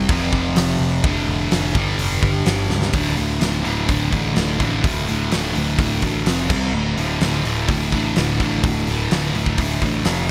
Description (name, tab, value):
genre	hard rock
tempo	126 BPM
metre	4/4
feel	straight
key	D minor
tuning	A4 = 440 Hz
part	sludgy distorted guitar	riff	0.0-10.3 s	D2 to C4	-23 LUFS	equal	overdrive
part	picked electric bass	bass	0.0-10.3 s	D1 to C#2	-27 LUFS	equal	none
part	big rock drum kit	drums	0.1-10.2 s	crash cymbal, hi-hat, kick drum, snare drum	-25 LUFS	equal	none
room	light reverb, small room reverb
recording	bright 1980s-style digital production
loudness	-20 LUFS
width	mono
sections	0.0-2.9 A section; 2.9-10.3 B section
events	drum fill 2.7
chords	0.1 F5; 1.0 Dm/F; 1.8 G5; 2.9 D5; 6.3 F5; 6.5 C5; 6.7 D5; 10.1 F5